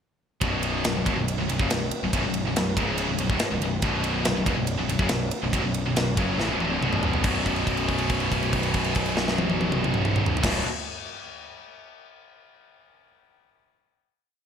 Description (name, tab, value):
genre	heavy metal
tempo	140 BPM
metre	4/4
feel	straight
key	B minor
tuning	A4 = 440 Hz
part	heavy high-gain guitar	riff	0.4-10.6 s	B1 to F#3	-29 LUFS	left 9 dB	distortion
part	heavy high-gain guitar	riff	0.4-10.6 s	B1 to F#3	-31 LUFS	right 1 dB	distortion
part	scooped high-gain guitar	riff	0.4-10.6 s	B1 to F#3	-30 LUFS	right 9 dB	distortion
part	fuzz picked electric bass	bass	0.4-10.6 s	B0 to A1	-30 LUFS	equal	overdrive
part	tight metal drum kit	drums	0.4-10.5 s	crash cymbal, kick drum, ride cymbal, snare drum, toms	-27 LUFS	equal	gated reverb
room	light reverb, small room ambience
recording	bright 1980s-style digital production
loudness	-22 LUFS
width	side -7 dB against mid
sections	0.4-7.3 riff; 7.3-10.7 final chord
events	drum fill 6.4-7.3; held note 7.3-10.4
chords	0.4 Bm; 7.3 B5